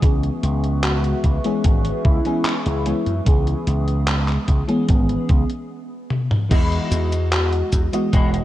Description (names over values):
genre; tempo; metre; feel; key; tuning
vaporwave; 74 BPM; 4/4; straight; unclear; A4 = 442 Hz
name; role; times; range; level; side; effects
FM electric piano with soft pad layer; accompaniment; 0.0-8.4 s; E3 to D#5; -24 LUFS; left 1 dB; phaser, wide subtle chorus, analog delay
warbly tape-like pad; sustained chords; 0.0-5.7 s; B4 to D#6; -34 LUFS; equal; chorus, built-in reverb
slap bass with an envelope filter; bass; 0.0-8.4 s; E1 to F#2; -21 LUFS; equal; none
detuned 8-bit digital drum machine; drums; 0.0-8.4 s; cabasa, crash cymbal, handclaps, hi-hat, toms; -25 LUFS; equal; vintage 12-bit sampler grit, gated reverb
electronic kick drum; drums; 0.0-8.3 s; none; -18 LUFS; equal; vintage 12-bit sampler grit
warm velvety synth lead; melody; 0.8-7.8 s; B3 to F#4; -27 LUFS; equal; chorus, tape echo
clean electric guitar; riff; 6.5-8.3 s; G#3 to F#4; -28 LUFS; left 2 dB; ensemble chorus, analog delay
room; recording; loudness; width
little or no reverb; cassette tape; -17 LUFS; side -14 dB against mid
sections
0.0-6.5 A section; 6.5-8.4 B section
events
stop 5.7-6.5; drum fill 6.1-6.5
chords
0.0 C#m7; 6.5 Emaj9